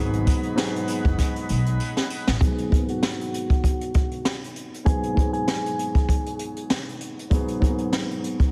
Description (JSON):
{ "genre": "hip hop, boom-bap hip-hop", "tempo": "98 BPM", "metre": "4/4", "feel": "swing 55% on 16ths", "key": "G# minor", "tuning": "A4 = 443 Hz", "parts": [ { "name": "dark concert grand piano", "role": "accompaniment", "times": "0.0-8.5 s", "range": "G#2 to G#4", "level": "-31 LUFS", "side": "equal", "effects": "cassette tape, high-pass filter, low-pass filter" }, { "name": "mellow tonewheel organ", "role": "sustained chords", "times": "0.0-2.4 s", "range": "G#4 to B5", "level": "-38 LUFS", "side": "equal", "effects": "slow rotary speaker, high-pass filter, low-pass filter" }, { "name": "upright bass", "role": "bass", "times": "0.0-2.4 s", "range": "F#1 to B1", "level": "-27 LUFS", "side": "equal", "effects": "none" }, { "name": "jazz brush drum kit", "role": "drums", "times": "0.1-8.5 s", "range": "hi-hat, kick drum, snare drum", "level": "-25 LUFS", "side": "equal", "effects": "none" }, { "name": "sleigh bells", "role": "percussion", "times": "0.3-2.3 s", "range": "none", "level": "-42 LUFS", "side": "equal", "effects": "none" }, { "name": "clean electric guitar", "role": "melody", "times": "2.4-6.8 s", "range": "F#4 to G#4", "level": "-34 LUFS", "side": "equal", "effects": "high-pass filter, low-pass filter, slapback echo" } ], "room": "light reverb, small room ambience", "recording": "heavily compressed radio sound", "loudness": "-24 LUFS", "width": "mono", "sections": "0.0-2.4 A section; 2.4-8.5 B section", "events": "drum fill 1.8-2.4; filter sweep 2.4-8.5", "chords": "0.0 G#m7" }